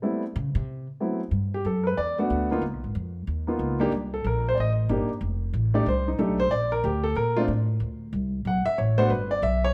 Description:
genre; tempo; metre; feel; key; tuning
jazz piano trio; 185 BPM; 4/4; swing 64% on 8ths; unclear; A4 = 440 Hz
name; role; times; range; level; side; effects
warm grand piano; melody; 0.0-9.7 s; F#3 to F#5; -27 LUFS; equal; plate reverb
upright bass; bass; 0.4-9.7 s; F1 to C#3; -29 LUFS; equal; none
room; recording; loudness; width
light reverb; none; -26 LUFS; mono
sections
0.0-1.3 A section; 1.3-9.7 A section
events
upright bass solo 0.0-1.3; grand piano solo 1.3-9.7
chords
0.0 Am7; 0.7 Cmaj7#11; 1.3 Gmaj9; 2.6 C#13; 3.9 Cm7; 5.2 F13; 6.5 Bbmaj7; 7.8 D7; 9.1 G

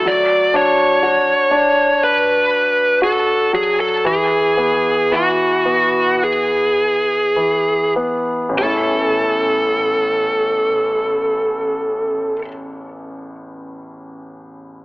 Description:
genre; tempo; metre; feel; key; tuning
pop ballad; 48-62 BPM; 4/4; straight; A major; A4 = 438 Hz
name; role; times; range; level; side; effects
bluesy overdriven lead guitar; melody; 0.0-12.4 s; F#4 to D5; -15 LUFS; equal; distortion
clear concert grand piano; accompaniment; 0.0-14.8 s; A1 to F#4; -20 LUFS; left 1 dB; none
room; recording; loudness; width
moderate plate reverb, RT60 2.5 s; telephone sound; -14 LUFS; side -23 dB against mid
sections
0.0-8.6 A section; 8.6-13.5 B section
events
slowing down 0.1-8.6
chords
0.1 D/F#; 4.0 E; 8.6 A

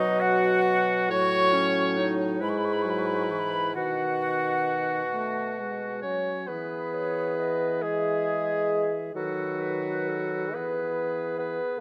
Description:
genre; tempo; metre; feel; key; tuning
classical, slow romantic movement for wind quintet; 45 BPM (dotted quarters); 6/8; uneven beats, rubato; E major; A4 = 441 Hz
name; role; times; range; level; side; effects
concert flute; melody; 0.0-11.8 s; B4 to C#6; -34 LUFS; equal; none
clear oboe; second line; 0.0-11.8 s; D#4 to C#5; -34 LUFS; equal; none
clear clarinet; accompaniment; 0.0-11.8 s; C#4 to B4; -35 LUFS; equal; none
mellow French horn; accompaniment; 0.0-11.6 s; D#3 to A3; -35 LUFS; equal; none
mellow bassoon; bass; 0.0-11.8 s; G#2 to C#4; -32 LUFS; equal; none
room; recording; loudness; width
moderate concert hall reverb, RT60 1.9 s; none; -27 LUFS; mono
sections
0.0-6.5 A section; 6.5-11.8 B section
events
none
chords
0.0 B; 1.1 A6; 2.4 E/G#; 3.8 B; 6.5 E; 9.2 B7/D#; 10.5 E

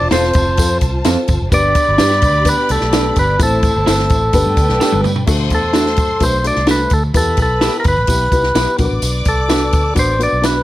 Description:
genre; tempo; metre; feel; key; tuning
uptempo 1960s-style soul; 128 BPM; 4/4; straight; G mixolydian; A4 = 440 Hz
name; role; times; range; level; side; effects
percussive tonewheel organ; melody; 0.0-10.6 s; A4 to D5; -16 LUFS; equal; overdrive, plate reverb
rich studio string section; second line; 0.0-10.6 s; D4 to D6; -25 LUFS; left 1 dB; plate reverb
vibraphone with medium hard mallets; second line; 0.0-5.0 s; A3 to D4; -28 LUFS; left 1 dB; plate reverb
vintage muted fingered electric bass; bass; 0.0-10.6 s; E1 to G2; -19 LUFS; equal; none
dark upright piano; accompaniment; 0.1-10.6 s; A3 to C5; -21 LUFS; left 3 dB; plate reverb
electric guitar through a small old amp; stabs; 0.1-10.6 s; C4 to C5; -20 LUFS; right 6 dB; warbly pitch drift, plate reverb
compact cocktail drum kit; drums; 0.1-10.5 s; crash cymbal, hi-hat, kick drum, snare drum, toms; -17 LUFS; equal; none
tambourine; percussion; 0.1-10.6 s; none; -28 LUFS; right 2 dB; none
room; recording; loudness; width
light reverb; none; -12 LUFS; side -15 dB against mid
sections
0.0-5.3 A section; 5.3-10.6 B section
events
drum fill 4.8-5.3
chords
0.0 F; 1.5 G; 3.4 Am; 4.3 G; 5.3 D; 7.1 Em; 8.8 Bm

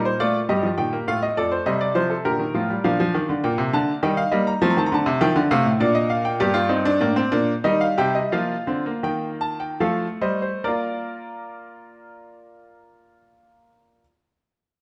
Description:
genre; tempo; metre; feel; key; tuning
classical, baroque-style 4-part fugue for grand piano; 67-102 BPM; 3/4; straight; Bb major; A4 = 440 Hz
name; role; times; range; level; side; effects
clear baby grand piano; solo; 0.0-14.0 s; F2 to Bb5; -22 LUFS; equal; none
room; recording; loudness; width
moderate recital hall reverb, RT60 1.3 s; none; -22 LUFS; mono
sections
0.0-2.9 A section; 2.9-10.6 B section; 10.6-14.8 C section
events
slowing down 5.5-10.6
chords
0.5 Eb/G; 1.1 F7; 2.3 Bb; 4.0 Eb; 4.6 F7; 5.8 Bb; 6.4 Gm; 7.6 Eb; 8.3 F7sus4; 9.8 F7; 10.6 Bb

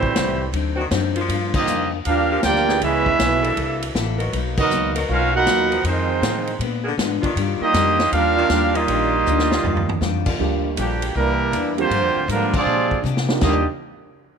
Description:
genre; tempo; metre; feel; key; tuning
jazz, big band swing; 158 BPM; 4/4; swing 65% on 8ths; Eb major; A4 = 440 Hz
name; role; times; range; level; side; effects
clear trumpet section; melody; 0.0-13.7 s; G3 to G5; -21 LUFS; equal; none
warm trombone section; second line; 0.0-13.7 s; A#2 to A#4; -23 LUFS; right 12 dB; none
picked steel-string acoustic guitar; accompaniment; 0.0-13.6 s; F2 to A4; -27 LUFS; left 15 dB; none
upright bass; bass; 0.0-13.6 s; A1 to C3; -25 LUFS; left 1 dB; none
swinging big-band drum kit; drums; 0.0-13.5 s; crash cymbal, hi-hat, kick drum, ride cymbal, snare drum, toms; -26 LUFS; equal; none
clear saxophone section; sustained chords; 0.8-10.7 s; D3 to Bb4; -28 LUFS; left 1 dB; none
warm upright piano; accompaniment; 10.4-13.7 s; G3 to G4; -25 LUFS; right 14 dB; none
room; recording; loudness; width
light reverb, small room ambience; 1960s-style stereo with parts hard left and right; -17 LUFS; side -6 dB against mid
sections
0.0-10.4 A section; 10.4-13.4 B section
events
band accent 1.5, 4.5, 12.5; drum fill 9.3-10.0, 13.0-13.4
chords
0.0 Am7; 0.5 D7b9; 1.3 Gm7; 2.8 Dbm7; 3.6 C13; 4.3 Bmaj7; 5.8 Fm7; 6.6 Bb7b9; 7.4 Ebmaj9; 10.4 Gm7; 11.1 C9; 11.9 Gm7; 12.7 Bb13; 13.4 Ebmaj9

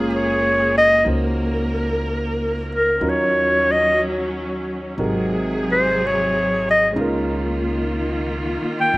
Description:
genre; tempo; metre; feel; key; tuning
jazz ballad; 61 BPM; 4/4; swing 68% on 8ths; unclear; A4 = 440 Hz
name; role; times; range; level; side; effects
warm concert grand piano; accompaniment; 0.0-9.0 s; C3 to C5; -26 LUFS; right 1 dB; slapback echo
clear studio string section; sustained chords; 0.0-9.0 s; C3 to Bb4; -24 LUFS; equal; none
upright bass; bass; 0.0-9.0 s; Gb1 to Eb2; -28 LUFS; equal; none
breathy clarinet; melody; 0.1-9.0 s; Bb4 to G5; -16 LUFS; equal; slapback echo
room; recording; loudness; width
little or no reverb; recorded outdoors, with no room sound; -17 LUFS; side -21 dB against mid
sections
0.0-9.0 A section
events
clarinet solo 0.0-9.0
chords
0.0 Gbmaj9#11; 3.0 Ebm9; 5.0 Ab7; 7.0 Db69

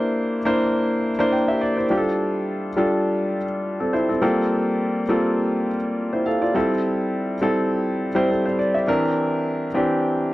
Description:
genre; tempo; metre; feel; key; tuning
soul; 103 BPM; 4/4; swing 54% on 16ths; F major; A4 = 436 Hz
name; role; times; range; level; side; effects
clear grand piano; solo; 0.0-10.3 s; E3 to G5; -19 LUFS; equal; none
room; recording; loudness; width
light reverb; dry, close 1970s-style studio recording; -19 LUFS; side -17 dB against mid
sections
0.0-10.3 A section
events
grand piano fill 10.0-10.3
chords
0.0 C9; 1.9 F69; 4.2 Gm11; 6.5 Am7; 8.9 C9

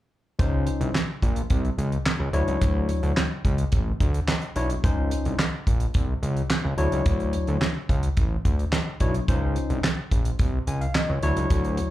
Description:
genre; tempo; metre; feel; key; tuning
early-eighties boogie funk; 108 BPM; 4/4; straight; unclear; A4 = 436 Hz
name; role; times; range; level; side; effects
barky tine electric piano; accompaniment; 0.4-11.9 s; F3 to Ab5; -28 LUFS; left 3 dB; slapback echo
fat analog bass; bass; 0.4-11.8 s; A1 to D2; -24 LUFS; equal; none
damped 70s drum kit; drums; 0.4-11.9 s; handclaps, hi-hat, kick drum, snare drum; -24 LUFS; equal; slapback echo
room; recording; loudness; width
light reverb; live gig heard through the venue's PA, club reverb; -22 LUFS; side -15 dB against mid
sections
0.4-11.9 A section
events
none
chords
0.4 Dbmaj9; 2.3 Dmaj9; 4.8 Dbmaj9; 6.8 Dmaj9; 9.3 Dbmaj9; 11.2 Dmaj9

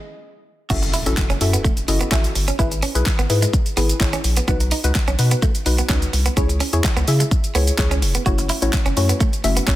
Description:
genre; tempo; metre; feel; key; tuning
dance-pop; 127 BPM; 4/4; straight; F# dorian; A4 = 440 Hz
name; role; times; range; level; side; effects
soft round pluck; accompaniment; 0.7-9.8 s; A3 to E5; -25 LUFS; left 3 dB; chorus, sidechain pumping
direct-recorded clean electric guitar; riff; 0.7-9.8 s; G#3 to F#4; -26 LUFS; right 6 dB; lush chorus
saturated sub bass; bass; 0.7-9.8 s; E#1 to C#3; -20 LUFS; equal; sidechain pumping
pop drum kit; drums; 0.7-9.8 s; crash cymbal, handclaps, hi-hat, kick drum, shaker, snare drum; -20 LUFS; equal; none
impact; sound effects; 0.8-2.6 s; none; -32 LUFS; equal; none
room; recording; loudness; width
digital ambience; dense, heavily limited modern master; -16 LUFS; side -15 dB against mid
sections
0.7-9.8 A section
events
stop 0.0-0.7; drop 0.7-9.8; impact 0.7-2.6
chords
0.0 N.C.; 0.7 F#m7; 2.6 E/G#; 4.5 B; 6.4 C#m; 8.3 F#m7

